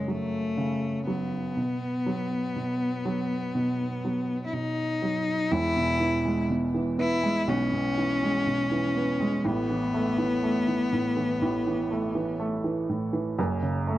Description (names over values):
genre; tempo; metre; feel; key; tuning
pop; 61 BPM; 4/4; straight; E major; A4 = 442 Hz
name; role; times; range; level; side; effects
clear cello; melody; 0.0-12.4 s; G#3 to E4; -28 LUFS; left 2 dB; none
warm baby grand piano; accompaniment; 0.0-14.0 s; E1 to B3; -27 LUFS; right 2 dB; none
room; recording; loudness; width
light reverb; dry, close 1970s-style studio recording, tape saturation; -25 LUFS; side -14 dB against mid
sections
0.0-5.5 A section; 5.5-14.0 B section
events
none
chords
0.0 F#m; 1.6 B; 5.5 E; 9.4 Asus2; 13.4 F#m